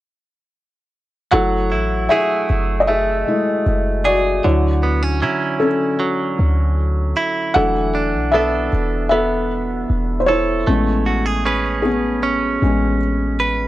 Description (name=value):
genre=R&B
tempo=77 BPM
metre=4/4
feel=straight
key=F# minor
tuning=A4 = 438 Hz
part: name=felt-muted upright piano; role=accompaniment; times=1.3-13.7 s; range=F#3 to F#5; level=-19 LUFS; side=left 2 dB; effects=none
part: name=direct-recorded clean electric guitar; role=arpeggios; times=1.3-13.7 s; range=D3 to B4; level=-21 LUFS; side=right 4 dB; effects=none
part: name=warm 808-style bass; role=bass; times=1.3-13.7 s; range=E1 to D3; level=-20 LUFS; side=equal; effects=none
room=little or no reverb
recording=dry, gritty hardware recording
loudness=-15 LUFS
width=side -15 dB against mid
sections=1.3-13.7 A section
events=felt piano solo 1.3-13.7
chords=1.3 F#m9; 4.4 Dmaj9; 7.6 E7sus4; 10.7 Amaj9